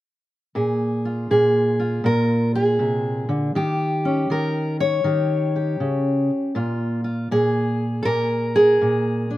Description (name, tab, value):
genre	acoustic country blues, solo or duo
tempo	80 BPM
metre	4/4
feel	swing 65% on 8ths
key	unclear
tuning	A4 = 440 Hz
part	fingerpicked steel-string acoustic guitar	solo	0.6-9.4 s	Bb2 to Db5	-18 LUFS	equal	slapback echo
room	little or no reverb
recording	recorded outdoors, with no room sound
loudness	-18 LUFS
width	side -15 dB against mid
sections	0.6-9.4 A section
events	none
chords	0.6 Bb7(no3); 3.6 Eb7; 6.6 Bb7(no3)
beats	| 0.55 1.30 2.05 2.81 | 3.56 4.31 5.06 5.81 | 6.56 7.31 8.06 8.82